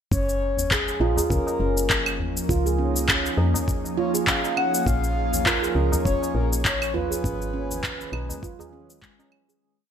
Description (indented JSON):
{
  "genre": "organic downtempo",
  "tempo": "101 BPM",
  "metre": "4/4",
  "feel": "swing 56% on 16ths",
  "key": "unclear",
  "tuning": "A4 = 440 Hz",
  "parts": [
    { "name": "breathy flute-like synth lead", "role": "melody", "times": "0.1-9.0 s", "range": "Ab4 to Gb5", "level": "-29 LUFS", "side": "left 2 dB", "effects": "lush chorus, ping-pong delay" },
    { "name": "ethereal airy pad", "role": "sustained chords", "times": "1.0-9.6 s", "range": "Eb3 to Db5", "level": "-32 LUFS", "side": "equal", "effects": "ensemble chorus, built-in reverb, sidechain pumping" },
    { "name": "handpan", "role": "arpeggios", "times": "0.1-9.6 s", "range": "Ab3 to Ab4", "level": "-29 LUFS", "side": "right 6 dB", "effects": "digital delay" },
    { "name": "woody FM bass", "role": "bass", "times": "0.1-8.3 s", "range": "F1 to F2", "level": "-26 LUFS", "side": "equal", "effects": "sidechain pumping" },
    { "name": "electronic cabasa, handclaps and claves", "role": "drums", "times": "0.1-9.6 s", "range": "none", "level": "-25 LUFS", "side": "equal", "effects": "studio reverb, gated reverb" },
    { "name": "electronic kick drum", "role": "drums", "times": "0.1-9.2 s", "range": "none", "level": "-27 LUFS", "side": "equal", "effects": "studio reverb" },
    { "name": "tabla", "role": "percussion", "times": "0.3-9.6 s", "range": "none", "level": "-35 LUFS", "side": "left 3 dB", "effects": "none" }
  ],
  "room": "light reverb, digital ambience",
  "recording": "bright 1980s-style digital production",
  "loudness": "-21 LUFS",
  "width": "side -8 dB against mid",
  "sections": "0.1-9.6 groove",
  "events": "fade-out 6.4-9.6",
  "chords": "0.1 Gb; 2.5 Dbadd9; 4.9 Bbm; 7.2 Abm"
}